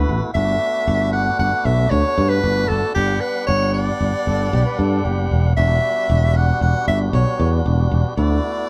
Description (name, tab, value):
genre	progressive instrumental, progressive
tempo	115 BPM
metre	5/4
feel	straight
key	E dorian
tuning	A4 = 439 Hz
part	clear soprano saxophone	melody	0.0-8.7 s	G4 to F#5	-23 LUFS	equal	none
part	warm flugelhorn	second line	0.0-0.2, 4.3-5.4 s	G4 to B4	-31 LUFS	equal	none
part	tonewheel organ	accompaniment	0.0-8.7 s	G3 to F#5	-29 LUFS	equal	overdrive
part	sustaining fretless electric bass	bass	0.0-8.4 s	E1 to G2	-20 LUFS	equal	none
room	moderate studio reverb, RT60 0.5 s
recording	band playing live in one room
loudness	-18 LUFS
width	mono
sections	0.0-8.7 A section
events	none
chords	0.4 Gmaj7; 3.0 Em7; 8.2 D6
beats	| 0.35 0.87 1.40 1.92 2.44 | 2.96 3.48 4.00 4.53 5.05 | 5.57 6.09 6.61 7.13 7.66 | 8.18